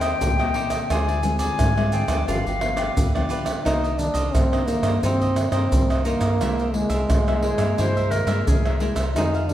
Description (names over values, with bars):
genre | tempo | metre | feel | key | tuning
samba and choro | 87 BPM | 4/4 | straight | C minor | A4 = 441 Hz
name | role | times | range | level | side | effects
mellow jazz flute | second line | 0.0-3.3, 7.4-9.0 s | Ab4 to Ab5 | -27 LUFS | left 4 dB | none
cavaquinho | accompaniment | 0.0-9.5 s | Eb4 to F5 | -32 LUFS | right 4 dB | none
nylon-string guitar | accompaniment | 0.0-9.5 s | G2 to G4 | -29 LUFS | left 3 dB | none
metallic FM bass | bass | 0.0-9.5 s | G1 to Ab2 | -25 LUFS | equal | none
maracas, pandeiro, tamborim and surdo | percussion | 0.0-9.5 s | none | -24 LUFS | right 1 dB | none
warm trombone | melody | 3.7-9.5 s | Ab3 to Eb4 | -24 LUFS | right 1 dB | none
room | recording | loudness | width
moderate recital hall reverb, RT60 1.8 s | none | -19 LUFS | side -12 dB against mid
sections
0.0-3.7 A section; 3.7-9.5 B section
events
flute solo 0.0-3.7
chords
0.0 Eb6; 0.9 Dm7b5; 2.3 G7; 3.7 Cm9; 6.4 C7b13